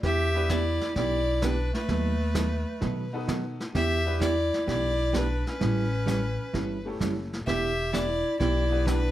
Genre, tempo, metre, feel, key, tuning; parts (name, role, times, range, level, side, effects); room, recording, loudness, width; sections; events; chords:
country, western swing; 129 BPM; 4/4; swing 69% on 8ths; A4 = 441 Hz
bright clarinet; second line; 0.0-9.1 s; A3 to G4; -31 LUFS; right 2 dB
vintage hollow-body jazz guitar; accompaniment; 0.0-9.0 s; D#3 to A4; -32 LUFS; right 4 dB
upright bass; bass; 0.0-9.1 s; E1 to B2; -29 LUFS; equal
vintage brush drum kit; drums; 0.0-9.1 s; brushed snare drum, hi-hat, kick drum, snare drum; -35 LUFS; equal
clear fiddle; melody; 0.1-9.1 s; B4 to E5; -31 LUFS; left 2 dB
bright upright piano; accompaniment; 0.3-9.1 s; A3 to B4; -36 LUFS; left 3 dB
moderate studio reverb, RT60 0.8 s; -24 LUFS; side -13 dB against mid
0.0-9.1 A section
0.0 Em7; 1.9 B7/D#; 3.7 Em7; 5.6 A7; 7.5 Em7